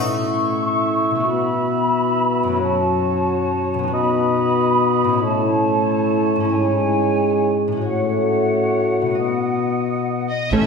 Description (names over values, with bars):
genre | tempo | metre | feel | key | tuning
cinematic, heroic adventure film score | 137 BPM | 3/4 | straight | unclear | A4 = 435 Hz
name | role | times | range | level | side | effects
dark cor anglais | second line | 0.0-10.7 s | A4 to E5 | -25 LUFS | right 4 dB | none
large flute ensemble | second line | 0.0-10.3 s | F#5 to C#6 | -23 LUFS | equal | none
mellow clarinet | second line | 0.0-10.7 s | C#4 to F#4 | -24 LUFS | equal | none
mellow French horn section | sustained chords | 0.0-10.7 s | E3 to C#4 | -23 LUFS | left 2 dB | none
concert harp | arpeggios | 0.0-10.7 s | F#2 to D#5 | -24 LUFS | left 4 dB | none
rich symphonic violin section | melody | 10.3-10.7 s | D#5 to E5 | -28 LUFS | left 3 dB | none
warm symphonic violin section | second line | 10.5-10.7 s | E4 to C#5 | -34 LUFS | left 3 dB | none
rich symphonic viola section | accompaniment | 10.5-10.7 s | A3 to C#4 | -26 LUFS | equal | none
rich symphonic cello section | bass | 10.5-10.6 s | A2 | -26 LUFS | right 2 dB | none
rich symphonic double bass section | bass | 10.5-10.6 s | A1 | -20 LUFS | right 4 dB | none
room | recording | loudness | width
wet scoring stage reverb, RT60 1.9 s | heard from further back in the room | -17 LUFS | side -5 dB against mid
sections
0.0-10.5 A section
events
build-up 0.0-10.5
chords
0.0 A; 1.3 Bsus4; 2.6 F#m; 3.9 B; 5.2 A; 6.5 C#m/G#; 7.9 F#m/A; 9.2 B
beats
0.41 0.85 | 1.29 1.73 2.17 | 2.61 3.05 3.48 | 3.92 4.36 4.79 | 5.23 5.67 6.11 | 6.55 6.99 7.42 | 7.86 8.30 8.74 | 9.19 9.64 10.09 | 10.53